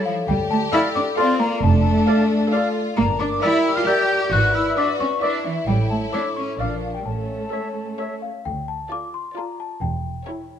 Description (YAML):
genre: cinematic, playful, whimsical film cue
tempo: 133 BPM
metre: 3/4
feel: straight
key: D minor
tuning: A4 = 438 Hz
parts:
  - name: rich studio violin section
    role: melody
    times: 0.0-10.6 s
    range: C#5 to F5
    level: -38 LUFS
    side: left 4 dB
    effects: none
  - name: clear studio violin section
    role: second line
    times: 0.0-10.6 s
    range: C#4 to A4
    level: -30 LUFS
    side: left 2 dB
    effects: none
  - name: warm studio viola section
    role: accompaniment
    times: 0.0-10.6 s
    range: E4 to D5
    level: -30 LUFS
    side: right 2 dB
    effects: none
  - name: mellow French horn section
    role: sustained chords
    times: 0.0-8.2 s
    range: A4 to D5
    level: -27 LUFS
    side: left 3 dB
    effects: none
  - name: rich studio cello section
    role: bass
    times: 0.0-10.2 s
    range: D2 to G4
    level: -23 LUFS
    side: equal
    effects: none
  - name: worn celesta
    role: melody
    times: 0.1-10.6 s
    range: E5 to G6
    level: -28 LUFS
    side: left 7 dB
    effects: none
  - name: hollow concert flute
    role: second line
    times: 0.1-8.2 s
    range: E5 to G6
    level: -27 LUFS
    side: left 1 dB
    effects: none
  - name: dark studio double bass section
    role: bass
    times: 0.3-10.2 s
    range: E1 to D2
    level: -23 LUFS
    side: right 3 dB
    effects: none
  - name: mellow clarinet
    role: second line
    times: 0.7-8.1 s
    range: C#5 to D5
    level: -32 LUFS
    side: left 2 dB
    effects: none
  - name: warm oboe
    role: second line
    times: 0.7-8.2 s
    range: E5 to F5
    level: -34 LUFS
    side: right 2 dB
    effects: none
room: moderate scoring stage reverb, RT60 1.7 s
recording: none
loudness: -18 LUFS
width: side -9 dB against mid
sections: 0.0-8.5 A section; 8.5-10.6 B section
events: none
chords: 0.3 Dm; 1.6 Dm/F; 3.0 Em7b5/G; 4.3 E7/G#; 5.7 A; 6.6 Bb; 7.1 A; 8.5 Dm; 9.8 A7/E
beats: | 0.28 0.73 1.18 | 1.63 2.08 2.52 | 2.97 3.42 3.87 | 4.32 4.77 5.22 | 5.67 6.13 6.59 | 7.06 7.52 7.99 | 8.45 8.91 9.36 | 9.81 10.27